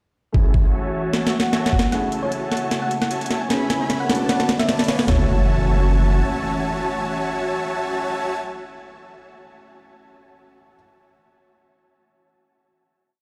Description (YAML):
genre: future bass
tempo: 152 BPM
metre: 4/4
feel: swing 54% on 16ths, half-time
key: F# minor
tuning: A4 = 440 Hz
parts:
  - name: felt-muted upright piano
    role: accompaniment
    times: 0.3-10.8 s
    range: A3 to G#4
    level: -32 LUFS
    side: equal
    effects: sidechain pumping, digital delay
  - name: airy breathy pad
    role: sustained chords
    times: 0.3-8.4 s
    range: C#3 to C#5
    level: -32 LUFS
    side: equal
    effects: chorus, sidechain pumping
  - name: dense compressed supersaw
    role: riff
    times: 0.3-8.4 s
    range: B3 to B5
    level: -29 LUFS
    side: equal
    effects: sidechain pumping, low-pass filter, digital delay
  - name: electronic kick drum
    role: drums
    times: 0.3-1.8 s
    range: none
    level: -19 LUFS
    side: equal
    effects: none
  - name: trap drum kit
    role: drums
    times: 1.1-5.2 s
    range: hi-hat, snare drum, toms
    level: -25 LUFS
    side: equal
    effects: none
  - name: swell, riser and impact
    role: sound effects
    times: 1.3-8.4 s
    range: none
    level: -33 LUFS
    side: equal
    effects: none
  - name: thumb-piano-like synth pluck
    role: melody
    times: 1.9-8.4 s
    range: C#5 to G#5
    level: -31 LUFS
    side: equal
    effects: chorus, sidechain pumping, digital delay
  - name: airy dreamy lead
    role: arpeggios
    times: 1.9-8.4 s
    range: G#5 to B5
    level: -35 LUFS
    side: equal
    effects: chorus, sidechain pumping, digital delay
  - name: saturated sub bass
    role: bass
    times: 1.9-6.2 s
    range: F#1 to C#2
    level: -24 LUFS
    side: equal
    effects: sidechain pumping, high-pass filter
room: light reverb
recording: played on a big sound system in a bare room, stone room reverb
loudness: -21 LUFS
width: mono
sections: 0.3-1.9 intro; 1.9-5.1 build; 5.1-8.2 final chord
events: filter sweep on analog synth pad 0.3-1.9; drum fill 1.1-1.9, 1.9-5.1; swell 1.3-1.9; build-up 1.9-5.1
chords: 0.3 F#m7; 3.5 C#m7; 4.1 Bm7; 5.1 F#m7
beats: | 0.34 0.74 1.13 1.53 | 1.92 2.32 2.71 3.11 | 3.50 3.90 4.29 4.69 | 5.08 5.48 5.87 6.27 | 6.66 7.06 7.45 7.84